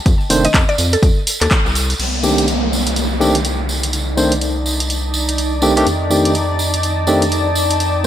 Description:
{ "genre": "deep house", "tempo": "124 BPM", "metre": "4/4", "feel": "swing 60% on 16ths", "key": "C dorian", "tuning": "A4 = 440 Hz", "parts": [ { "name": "mallet-like synth pluck", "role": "melody", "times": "0.0-1.9 s", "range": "A4 to Eb5", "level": "-22 LUFS", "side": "equal", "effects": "chorus, tape echo" }, { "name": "rubbery square bass", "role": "bass", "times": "0.1-8.1 s", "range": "F1 to F2", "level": "-20 LUFS", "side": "equal", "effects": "sidechain pumping" }, { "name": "electronic kick drum", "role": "drums", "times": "0.1-1.6 s", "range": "none", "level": "-14 LUFS", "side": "equal", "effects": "none" }, { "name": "punchy analog drum machine", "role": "drums", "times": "0.1-7.9 s", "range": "crash cymbal, handclaps, hi-hat", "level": "-20 LUFS", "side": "equal", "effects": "none" }, { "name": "tambourine", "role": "percussion", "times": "0.1-8.1 s", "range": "none", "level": "-24 LUFS", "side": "right 2 dB", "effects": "none" }, { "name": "barky tine electric piano", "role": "stabs", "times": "0.3-8.1 s", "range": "Eb3 to C5", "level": "-18 LUFS", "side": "equal", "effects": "medium stereo tremolo, dub echo" }, { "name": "downlifter", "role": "sound effects", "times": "2.0-5.9 s", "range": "none", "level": "-22 LUFS", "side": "equal", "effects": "none" }, { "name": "granular cloud pad", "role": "texture", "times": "3.8-8.1 s", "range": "Eb4 to A5", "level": "-21 LUFS", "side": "left 1 dB", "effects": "built-in reverb, sidechain pumping" } ], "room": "moderate lush hall reverb, RT60 1.6 s", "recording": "none", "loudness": "-13 LUFS", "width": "side -11 dB against mid", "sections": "0.0-2.0 A section; 2.0-8.1 B section", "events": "band accent 1.5", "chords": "0.0 F7; 2.0 Cm69; 5.9 F13" }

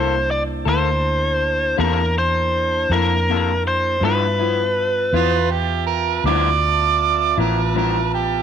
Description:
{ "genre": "blues", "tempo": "54 BPM (dotted quarters)", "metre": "12/8", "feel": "straight", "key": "G mixolydian", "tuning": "A4 = 445 Hz", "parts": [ { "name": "biting lead guitar", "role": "melody", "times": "0.0-5.5 s", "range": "Bb4 to D5", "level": "-20 LUFS", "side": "left 1 dB", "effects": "overdrive" }, { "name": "electric guitar through a small old amp", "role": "accompaniment", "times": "0.0-8.0 s", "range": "G2 to A4", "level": "-25 LUFS", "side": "left 11 dB", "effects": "harmonic tremolo" }, { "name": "mellow tonewheel organ", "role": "sustained chords", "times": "0.0-8.4 s", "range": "Bb3 to A5", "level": "-28 LUFS", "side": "right 2 dB", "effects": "slow rotary speaker" }, { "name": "vintage muted fingered electric bass", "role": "bass", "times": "0.0-8.4 s", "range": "A1 to G2", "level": "-22 LUFS", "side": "right 1 dB", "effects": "none" }, { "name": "mellow harmonica", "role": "second line", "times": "5.1-8.4 s", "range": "F4 to D5", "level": "-19 LUFS", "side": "right 10 dB", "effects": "overdrive" } ], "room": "moderate echo chamber reverb, RT60 1.8 s", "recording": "1960s-style stereo with parts hard left and right", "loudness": "-16 LUFS", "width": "side -8 dB against mid", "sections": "0.0-8.4 A section", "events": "none", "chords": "0.0 C13; 4.0 G13" }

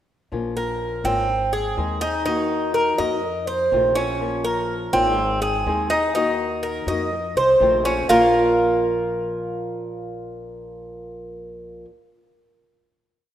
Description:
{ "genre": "latin", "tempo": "124 BPM", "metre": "4/4", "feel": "straight", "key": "Bb minor", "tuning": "A4 = 442 Hz", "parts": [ { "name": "nylon-string guitar", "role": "accompaniment", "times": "0.3-11.9 s", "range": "Bb2 to Ab4", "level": "-28 LUFS", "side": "left 4 dB", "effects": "none" }, { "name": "upright bass", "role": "bass", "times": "0.3-11.8 s", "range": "Ab1 to F2", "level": "-32 LUFS", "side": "left 1 dB", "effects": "none" }, { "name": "Cuban tres", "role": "arpeggios", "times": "0.6-11.9 s", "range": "Bb3 to Eb5", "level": "-20 LUFS", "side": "right 1 dB", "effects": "none" } ], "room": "wet lush hall reverb, RT60 2.2 s", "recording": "rough home demo mix", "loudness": "-19 LUFS", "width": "side -11 dB against mid", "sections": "0.3-8.1 montuno (vamp); 8.1-12.0 final chord", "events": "none", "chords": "0.3 Bbm; 1.3 Ab; 2.3 Ebm; 3.2 F7; 4.2 Bbm; 5.2 Ab; 6.2 Ebm; 7.1 F7; 8.1 Bbm" }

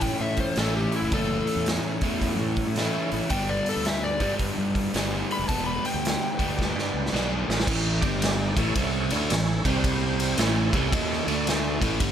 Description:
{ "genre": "blues rock power trio and southern rock", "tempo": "110 BPM", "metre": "4/4", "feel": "swing 65% on 8ths", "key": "A mixolydian", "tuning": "A4 = 442 Hz", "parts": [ { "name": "overdriven slide guitar", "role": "melody", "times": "0.0-6.9 s", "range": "E4 to B5", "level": "-30 LUFS", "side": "left 3 dB", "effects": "none" }, { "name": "overdriven tonewheel organ", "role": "sustained chords", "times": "0.0-11.8 s", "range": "G3 to D5", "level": "-35 LUFS", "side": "right 5 dB", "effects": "slow rotary speaker, chorus vibrato" }, { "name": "crunchy overdriven guitar", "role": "riff", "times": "0.0-12.1 s", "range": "G2 to E4", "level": "-27 LUFS", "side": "equal", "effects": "none" }, { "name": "fuzz fingered electric bass", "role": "bass", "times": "0.0-12.1 s", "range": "E1 to A2", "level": "-30 LUFS", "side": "right 1 dB", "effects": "overdrive" }, { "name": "raw garage drum kit", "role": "drums", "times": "0.0-12.1 s", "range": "crash cymbal, hi-hat, kick drum, ride cymbal, snare drum", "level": "-28 LUFS", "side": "equal", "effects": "none" } ], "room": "light reverb", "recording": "none", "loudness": "-23 LUFS", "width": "side -9 dB against mid", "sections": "0.0-7.7 A section; 7.7-12.1 B section", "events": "drum fill 6.6-7.7", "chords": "0.0 A; 3.3 G; 7.7 A5; 7.9 G5; 8.5 A; 9.6 C5; 10.4 A; 11.2 D5; 11.7 A5" }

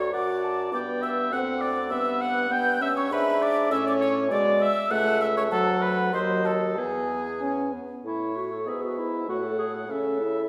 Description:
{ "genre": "quick classical-period movement for wind quintet", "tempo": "99 BPM", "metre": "2/4", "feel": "rubato", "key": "A major from 3.1 s", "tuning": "A4 = 440 Hz", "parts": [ { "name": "mellow hollow concert flute", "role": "melody", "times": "0.0-10.5 s", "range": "B4 to G6", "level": "-34 LUFS", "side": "equal", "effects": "none" }, { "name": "warm oboe", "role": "second line", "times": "0.0-10.5 s", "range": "G#4 to G5", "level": "-32 LUFS", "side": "equal", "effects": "none" }, { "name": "dark clarinet", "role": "accompaniment", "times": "0.0-10.5 s", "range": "E4 to A5", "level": "-31 LUFS", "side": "equal", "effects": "none" }, { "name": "warm French horn", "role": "accompaniment", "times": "0.0-10.5 s", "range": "F#3 to F#4", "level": "-32 LUFS", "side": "equal", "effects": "none" }, { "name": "mellow bassoon", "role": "bass", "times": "0.0-10.5 s", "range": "C#2 to C#3", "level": "-34 LUFS", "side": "equal", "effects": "none" } ], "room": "wet scoring stage reverb, RT60 1.6 s", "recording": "heard from further back in the room", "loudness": "-25 LUFS", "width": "mono", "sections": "0.0-8.1 A section; 8.1-10.5 B section", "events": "none", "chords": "0.0 D; 0.7 G; 1.3 D7; 1.9 Gmaj7; 3.1 E7/G#; 3.7 A; 4.3 E7/B; 4.9 A/C#; 5.5 Bm/D; 6.1 D#dim7; 6.8 E; 8.1 A; 8.7 E/G#; 9.3 A" }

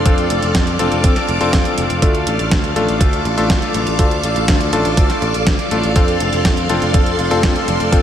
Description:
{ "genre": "italo disco", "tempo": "122 BPM", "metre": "4/4", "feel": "straight", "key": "F major", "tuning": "A4 = 440 Hz", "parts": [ { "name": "string machine, full ensemble", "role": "sustained chords", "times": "0.0-8.0 s", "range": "A4 to D6", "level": "-20 LUFS", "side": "equal", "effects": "ensemble chorus" }, { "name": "clear electric grand piano", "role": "stabs", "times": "0.0-8.0 s", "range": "A3 to A4", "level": "-20 LUFS", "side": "left 3 dB", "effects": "tape echo" }, { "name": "picked electric bass", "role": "bass", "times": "0.0-8.0 s", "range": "F1 to F2", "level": "-21 LUFS", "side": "right 1 dB", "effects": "tube saturation, tape echo" }, { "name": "clean 12-bit digital drum machine", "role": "drums", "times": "0.1-8.0 s", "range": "hi-hat, snare drum", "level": "-22 LUFS", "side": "right 1 dB", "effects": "gated reverb" }, { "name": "electronic kick drum", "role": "drums", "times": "0.1-8.0 s", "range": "none", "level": "-15 LUFS", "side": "equal", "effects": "none" } ], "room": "light reverb", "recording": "none", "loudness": "-13 LUFS", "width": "side -10 dB against mid", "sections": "0.0-8.0 A section", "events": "none", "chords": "0.0 F6; 2.0 Dm; 6.0 F6" }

